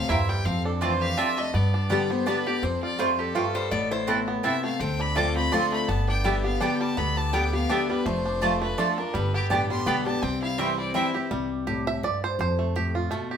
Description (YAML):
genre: bluegrass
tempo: 166 BPM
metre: 3/4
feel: swing 55% on 8ths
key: C major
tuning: A4 = 440 Hz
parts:
  - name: bluegrass banjo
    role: melody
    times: 0.0-13.4 s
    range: G3 to E5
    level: -31 LUFS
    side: right 4 dB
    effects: none
  - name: clear fiddle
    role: melody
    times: 0.0-11.1 s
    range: G4 to D6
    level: -30 LUFS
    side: left 2 dB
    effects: none
  - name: picked steel-string acoustic guitar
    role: accompaniment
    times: 0.0-13.4 s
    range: F2 to G4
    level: -28 LUFS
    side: left 3 dB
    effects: none
  - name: upright bass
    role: bass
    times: 0.0-13.1 s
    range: F1 to G2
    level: -30 LUFS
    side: equal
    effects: none
  - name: mandolin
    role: stabs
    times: 0.1-11.1 s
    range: A3 to A5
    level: -28 LUFS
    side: right 3 dB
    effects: none
  - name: lap resonator guitar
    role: second line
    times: 3.5-4.3 s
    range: A4 to D5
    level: -30 LUFS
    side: left 4 dB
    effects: none
room: wet studio reverb, RT60 0.9 s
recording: band playing live in one room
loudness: -23 LUFS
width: side -8 dB against mid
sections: 0.0-11.3 A section; 11.3-13.4 B section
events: five-string banjo solo 11.3-13.4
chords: 0.5 F6; 1.5 Gadd9; 2.6 Fadd9; 3.7 Amadd9; 4.8 Dm7; 5.9 G; 8.1 Dm/F; 9.1 G; 10.2 C; 11.3 C5; 12.4 F